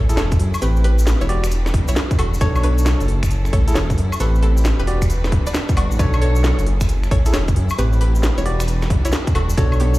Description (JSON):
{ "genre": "UK garage, two-step garage", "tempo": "134 BPM", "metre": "4/4", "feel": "swing 65% on 16ths", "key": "unclear", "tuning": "A4 = 440 Hz", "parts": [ { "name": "string-like resonator pluck", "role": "melody", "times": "0.0-9.9 s", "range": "B3 to F#5", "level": "-30 LUFS", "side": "equal", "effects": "chorus, digital delay" }, { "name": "rich studio violin section", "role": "sustained chords", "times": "0.0-10.0 s", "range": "C4 to C#5", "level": "-32 LUFS", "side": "equal", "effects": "sidechain pumping" }, { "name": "dark detuned saw bass", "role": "bass", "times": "0.0-10.0 s", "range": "D1 to F#2", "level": "-17 LUFS", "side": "equal", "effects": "none" }, { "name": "bell-like tine electric piano", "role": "stabs", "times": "0.1-10.0 s", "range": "C4 to D5", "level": "-26 LUFS", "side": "equal", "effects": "dub echo" }, { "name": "garage drum kit", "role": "drums", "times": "0.1-9.9 s", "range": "finger snaps, hi-hat, snare drum, woodblock", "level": "-25 LUFS", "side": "equal", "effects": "none" }, { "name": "cabasa", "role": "percussion", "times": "0.1-10.0 s", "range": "none", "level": "-36 LUFS", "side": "left 3 dB", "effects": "none" }, { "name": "electronic kick drum", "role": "drums", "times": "0.3-9.7 s", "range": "none", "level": "-20 LUFS", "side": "equal", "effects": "none" } ], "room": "little or no reverb", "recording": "played on a big sound system in a bare room, large studio reverb", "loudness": "-15 LUFS", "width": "side -18 dB against mid", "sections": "0.0-10.0 A section", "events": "none", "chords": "0.0 F#m9; 0.6 Am9; 1.3 Em9; 2.4 Bm9; 3.1 F#m9; 4.2 Am9; 4.9 Em9; 6.0 Bm9; 6.7 F#m9; 7.8 Am9; 8.5 Em9" }